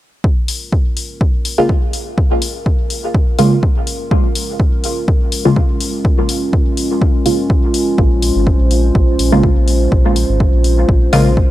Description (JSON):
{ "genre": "dub techno", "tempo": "124 BPM", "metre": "4/4", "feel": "swing 54% on 16ths", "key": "Bb minor", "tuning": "A4 = 439 Hz", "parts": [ { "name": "dark analog pad", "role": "sustained chords", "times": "0.2-11.5 s", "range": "Ab3 to C5", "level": "-20 LUFS", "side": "right 1 dB", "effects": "lush chorus, sidechain pumping" }, { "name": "electronic kick drum", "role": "drums", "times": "0.2-11.5 s", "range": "none", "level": "-14 LUFS", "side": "equal", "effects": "none" }, { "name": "electronic hi-hat", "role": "drums", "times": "0.5-11.2 s", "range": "none", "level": "-23 LUFS", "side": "left 5 dB", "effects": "none" }, { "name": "filtered dub chord stab", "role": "stabs", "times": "1.6-11.3 s", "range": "Db3 to F4", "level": "-16 LUFS", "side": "equal", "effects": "phaser, sidechain pumping, dub echo" }, { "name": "round analog bass", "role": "bass", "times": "8.0-11.5 s", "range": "Ab1 to Bb1", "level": "-15 LUFS", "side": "equal", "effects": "tube saturation, sidechain pumping" } ], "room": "digital ambience", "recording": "dry, gritty hardware recording", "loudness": "-12 LUFS", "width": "side -14 dB against mid", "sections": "0.2-11.5 A section", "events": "none", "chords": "0.2 Bbm7", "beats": "| 0.24 0.72 1.21 1.69 | 2.18 2.66 3.14 3.63 | 4.11 4.60 5.08 5.56 | 6.05 6.53 7.01 7.50 | 7.98 8.47 8.95 9.44 | 9.92 10.40 10.89 11.37" }